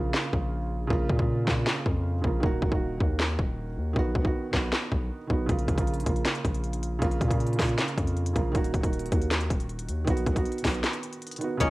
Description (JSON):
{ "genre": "hip hop, trap", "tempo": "157 BPM", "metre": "4/4", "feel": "half-time", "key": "Bb phrygian", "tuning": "A4 = 440 Hz", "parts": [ { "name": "guzheng", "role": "melody", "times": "0.0-2.0, 11.6-11.7 s", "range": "Bb3 to Ab5", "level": "-30 LUFS", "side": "left 1 dB", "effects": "cassette tape" }, { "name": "felt-muted upright piano", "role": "accompaniment", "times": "0.0-11.7 s", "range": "Db3 to Gb4", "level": "-31 LUFS", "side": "right 3 dB", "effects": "cassette tape" }, { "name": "long sustained 808-style bass", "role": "bass", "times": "0.0-11.7 s", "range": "Eb1 to Bb2", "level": "-29 LUFS", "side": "equal", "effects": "none" }, { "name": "trap drum kit", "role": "drums", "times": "0.1-11.7 s", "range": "handclaps, hi-hat, kick drum, snare drum", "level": "-27 LUFS", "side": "equal", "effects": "cassette tape" }, { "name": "warm velvety synth lead", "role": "second line", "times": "11.6-11.7 s", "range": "Eb5", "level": "-28 LUFS", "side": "left 4 dB", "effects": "chorus, tremolo, cassette tape" }, { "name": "warm chamber string section", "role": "sustained chords", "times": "11.6-11.7 s", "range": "none", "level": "barely audible", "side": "none", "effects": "none" } ], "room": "studio reverb", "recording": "home recording on cassette", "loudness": "-25 LUFS", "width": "side -19 dB against mid", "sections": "0.0-11.6 A section", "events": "break 0.0-5.5, 10.8-11.6", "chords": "0.0 Bbm; 2.4 Ebm; 4.0 B; 5.5 Bbm; 8.5 Ebm; 10.1 B" }